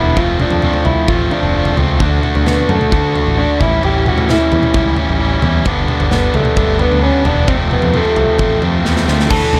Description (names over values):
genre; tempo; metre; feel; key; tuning
indie rock; 131 BPM; 4/4; straight; unclear; A4 = 438 Hz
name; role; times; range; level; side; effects
electric guitar through a small old amp; melody; 0.0-9.6 s; A3 to A4; -19 LUFS; equal; slapback echo
overdriven semi-hollow guitar; riff; 0.0-9.6 s; F2 to F#4; -19 LUFS; equal; none
modern bright picked electric bass; bass; 0.0-9.6 s; E1 to A2; -20 LUFS; equal; none
big rock drum kit; drums; 0.2-9.6 s; crash cymbal, kick drum, snare drum, toms; -19 LUFS; equal; none
biting overdriven guitar; riff; 9.3-9.6 s; E3 to A3; -23 LUFS; equal; lush chorus, slapback echo
room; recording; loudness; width
moderate studio reverb, RT60 0.5 s; none; -14 LUFS; mono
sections
0.0-9.3 A section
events
drum fill 8.8-9.3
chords
0.2 F; 2.0 D; 3.6 A7; 5.7 Gadd9; 7.5 F